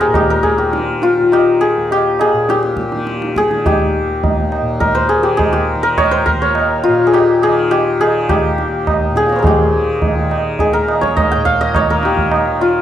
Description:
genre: indian classical, Hindustani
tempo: 103 BPM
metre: 5/4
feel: straight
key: Eb raga khamaj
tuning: A4 = 440 Hz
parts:
  - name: santur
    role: melody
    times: 0.0-12.8 s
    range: F4 to G5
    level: -14 LUFS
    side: left 2 dB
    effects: none
  - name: tanpura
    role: drone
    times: 0.0-12.8 s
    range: Eb2 to Eb3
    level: -23 LUFS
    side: left 1 dB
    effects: none
  - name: tabla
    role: percussion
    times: 0.1-12.5 s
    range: none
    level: -18 LUFS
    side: right 2 dB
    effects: none
room: light reverb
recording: dry, close 1970s-style studio recording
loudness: -12 LUFS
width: side -11 dB against mid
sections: 0.0-12.8 A section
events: none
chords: none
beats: 0.14 | 0.72 1.31 1.89 2.48 3.06 | 3.65 4.23 4.81 5.40 5.98 | 6.56 7.14 7.72 8.30 8.88 | 9.46 10.03 10.61 11.19 11.76 | 12.34

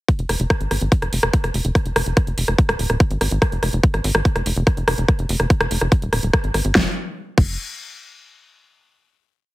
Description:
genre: psychedelic trance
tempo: 144 BPM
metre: 4/4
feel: straight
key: unclear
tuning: A4 = 440 Hz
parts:
  - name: big-room dance drum kit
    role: drums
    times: 0.1-7.5 s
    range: crash cymbal, hi-hat, rim click, snare drum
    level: -22 LUFS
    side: equal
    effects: overdrive
  - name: electronic kick drum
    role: drums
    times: 0.1-7.5 s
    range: none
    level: -17 LUFS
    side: equal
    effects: overdrive
  - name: tight sequencer bass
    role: bass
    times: 0.2-7.6 s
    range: Eb1 to Ab1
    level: -21 LUFS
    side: equal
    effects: tube saturation
room: digital ambience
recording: heavily compressed radio sound, multiband compression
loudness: -17 LUFS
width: side -18 dB against mid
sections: 0.1-6.8 groove; 6.8-8.4 final chord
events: none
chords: none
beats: | 0.09 0.50 0.92 1.33 | 1.75 2.17 2.58 3.00 | 3.42 3.83 4.25 4.67 | 5.08 5.50 5.92 6.33 | 6.75 7.17

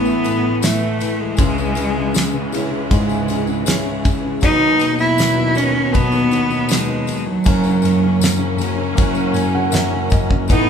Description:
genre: pop ballad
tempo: 79 BPM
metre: 4/4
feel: straight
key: unclear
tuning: A4 = 440 Hz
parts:
  - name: clear cello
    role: melody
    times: 0.0-10.7 s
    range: F#3 to E4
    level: -18 LUFS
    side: right 2 dB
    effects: none
  - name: warm concert grand piano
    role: accompaniment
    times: 0.0-10.7 s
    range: F#1 to G#5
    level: -21 LUFS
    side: left 4 dB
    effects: none
  - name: clear studio string section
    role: sustained chords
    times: 0.0-10.7 s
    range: C#2 to C#4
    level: -24 LUFS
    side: equal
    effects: none
  - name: picked steel-string acoustic guitar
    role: arpeggios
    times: 0.0-10.7 s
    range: C#3 to B4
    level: -25 LUFS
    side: right 4 dB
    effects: none
  - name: tambourine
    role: percussion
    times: 0.1-10.7 s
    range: none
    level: -31 LUFS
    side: left 6 dB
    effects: none
  - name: damped 70s drum kit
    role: drums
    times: 0.3-10.7 s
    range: kick drum, ride cymbal, snare drum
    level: -20 LUFS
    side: equal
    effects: none
  - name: clear studio cello section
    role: second line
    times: 10.5-10.7 s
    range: B3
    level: -20 LUFS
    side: right 2 dB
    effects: none
room: moderate large studio reverb, RT60 0.8 s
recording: band playing live in one room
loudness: -15 LUFS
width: side -7 dB against mid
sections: 0.0-10.7 A section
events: grand piano fill 9.0-10.5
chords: 0.0 Asus2; 1.4 C#m; 4.4 B/D#; 7.5 F#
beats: 0.62 | 1.38 2.14 2.90 3.66 | 4.42 5.18 5.94 6.70 | 7.46 8.22 8.98 9.74 | 10.50

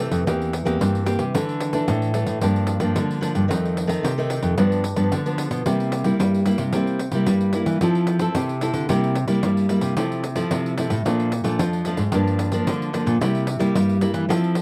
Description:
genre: samba and choro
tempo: 111 BPM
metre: 4/4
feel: straight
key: unclear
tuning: A4 = 440 Hz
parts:
  - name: nylon-string guitar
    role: accompaniment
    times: 0.0-14.6 s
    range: F2 to A4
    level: -25 LUFS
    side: equal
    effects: none
  - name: nylon-string guitar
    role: bass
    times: 0.0-14.6 s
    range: E2 to C4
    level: -25 LUFS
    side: equal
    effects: none
  - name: pandeiro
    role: percussion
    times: 0.1-14.6 s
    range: none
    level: -31 LUFS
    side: equal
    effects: none
room: little or no reverb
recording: dry, close 1970s-style studio recording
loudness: -22 LUFS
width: mono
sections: 0.0-14.6 A section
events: none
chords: 0.3 C7/E; 1.3 Dsus2; 2.4 Gm7; 3.5 F7; 4.6 G7; 5.7 C7; 7.8 Fmaj7; 8.9 C7; 10.0 Fmaj7/C; 11.1 Bbmaj7; 12.1 Gm7; 13.2 C7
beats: 0.27 0.81 | 1.35 1.89 2.42 2.96 | 3.50 4.04 4.58 5.12 | 5.66 6.20 6.74 7.28 | 7.81 8.35 8.89 9.43 | 9.97 10.51 11.05 11.59 | 12.13 12.67 13.21 13.75 | 14.29

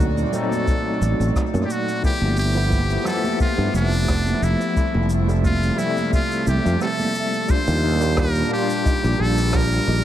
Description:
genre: sunset chillout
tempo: 88 BPM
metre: 4/4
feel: swing 55% on 16ths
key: unclear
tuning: A4 = 440 Hz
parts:
  - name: trumpet with metal mute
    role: melody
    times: 0.0-10.0 s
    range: D4 to C5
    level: -25 LUFS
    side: left 1 dB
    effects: tape echo
  - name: overdriven tine electric piano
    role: accompaniment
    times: 0.0-10.0 s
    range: F3 to E5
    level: -25 LUFS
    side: moving between left 4 dB and right 6 dB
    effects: medium tremolo, auto-pan, tape echo
  - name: airy breathy pad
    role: sustained chords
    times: 0.0-10.0 s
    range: Bb2 to E5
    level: -27 LUFS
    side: equal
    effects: chorus, vintage 12-bit sampler grit
  - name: sustaining fretless electric bass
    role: bass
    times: 0.0-10.0 s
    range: F1 to G2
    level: -20 LUFS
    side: equal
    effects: none
  - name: jazz brush drum kit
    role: drums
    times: 0.0-9.8 s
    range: hi-hat, rim click, shaker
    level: -35 LUFS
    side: equal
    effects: tape echo
  - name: congas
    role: percussion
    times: 0.0-7.1 s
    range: none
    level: -30 LUFS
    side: right 3 dB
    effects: none
  - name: electronic kick drum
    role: drums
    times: 0.7-9.7 s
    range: none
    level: -21 LUFS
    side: equal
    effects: none
  - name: soft round pluck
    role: arpeggios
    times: 7.5-10.0 s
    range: D4 to G4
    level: -33 LUFS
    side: left 1 dB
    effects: none
room: light reverb, small room ambience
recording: echo-heavy mix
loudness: -18 LUFS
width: side -12 dB against mid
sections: 0.0-7.5 A section; 7.5-10.0 B section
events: break 6.8-7.5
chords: 0.0 D7b9; 2.0 G13; 4.8 Fmaj7; 7.5 Ebmaj7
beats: 0.67 1.35 | 2.04 2.72 3.40 4.08 | 4.76 5.45 6.13 6.81 | 7.49 8.17 8.85 9.54

